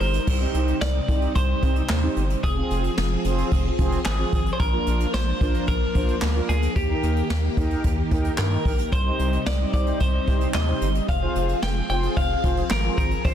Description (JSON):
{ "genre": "synth-pop", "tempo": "111 BPM", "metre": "4/4", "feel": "straight", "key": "C minor", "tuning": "A4 = 443 Hz", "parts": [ { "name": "twelve-string electric guitar", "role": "melody", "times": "0.0-13.3 s", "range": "G4 to G5", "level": "-28 LUFS", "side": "equal", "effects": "spring reverb, ping-pong delay" }, { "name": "string machine, violins", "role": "sustained chords", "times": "0.0-13.3 s", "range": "C3 to Bb4", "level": "-29 LUFS", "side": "equal", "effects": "ensemble chorus" }, { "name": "rubbery square bass", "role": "bass", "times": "0.0-13.3 s", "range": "F1 to G2", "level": "-24 LUFS", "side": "equal", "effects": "none" }, { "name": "jazz brush drum kit", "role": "drums", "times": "0.0-13.3 s", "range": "crash cymbal, handclaps, hi-hat, kick drum, snare drum", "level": "-25 LUFS", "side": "equal", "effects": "soft clipping on snare" }, { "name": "mellow synth brass", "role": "accompaniment", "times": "0.3-13.3 s", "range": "C4 to C5", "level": "-30 LUFS", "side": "right 2 dB", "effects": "chorus" } ], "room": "studio ambience", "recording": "dense, heavily limited modern master", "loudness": "-20 LUFS", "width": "side -10 dB against mid", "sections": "0.3-13.3 A section", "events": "none", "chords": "0.3 Cm; 2.4 Fm; 4.6 Bb; 6.8 Eb; 8.9 Cm; 11.1 Fm" }